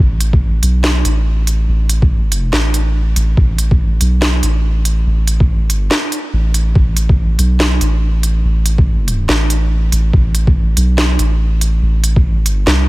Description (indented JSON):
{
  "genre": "deep dubstep",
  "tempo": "142 BPM",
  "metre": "4/4",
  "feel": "swing 60% on 16ths, half-time",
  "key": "A minor",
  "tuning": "A4 = 440 Hz",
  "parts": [
    { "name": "soft dub sub bass", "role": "bass", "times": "0.0-12.9 s", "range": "A1 to C2", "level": "-13 LUFS", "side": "equal", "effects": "none" },
    { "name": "garage drum kit", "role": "drums", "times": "0.2-12.8 s", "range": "hi-hat, snare drum", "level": "-19 LUFS", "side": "right 1 dB", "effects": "none" },
    { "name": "electronic kick drum", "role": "drums", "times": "0.3-12.2 s", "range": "none", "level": "-12 LUFS", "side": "equal", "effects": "none" }
  ],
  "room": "little or no reverb",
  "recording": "none",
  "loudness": "-11 LUFS",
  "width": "side -20 dB against mid",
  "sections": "0.0-12.9 A section",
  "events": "none",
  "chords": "none",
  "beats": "0.42 0.84 1.26 | 1.68 2.11 2.53 2.95 | 3.37 3.80 4.22 4.64 | 5.07 5.49 5.91 6.33 | 6.75 7.18 7.60 8.02 | 8.45 8.87 9.29 9.71 | 10.13 10.56 10.98 11.40 | 11.82 12.25 12.67"
}